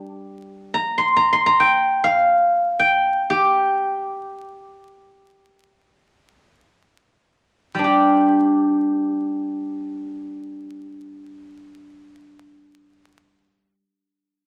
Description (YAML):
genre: chinese traditional, Chinese solo plucked strings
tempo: free time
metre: none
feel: none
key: G yu mode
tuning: A4 = 440 Hz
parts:
  - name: steel-string zither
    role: solo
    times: 0.0-13.8 s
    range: G3 to C6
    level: -20 LUFS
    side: equal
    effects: none
room: moderate studio reverb, RT60 0.8 s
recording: vinyl crackle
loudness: -19 LUFS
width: mono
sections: 0.0-7.9 A section; 7.9-12.4 B section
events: slowing down 3.6-7.9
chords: none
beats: free time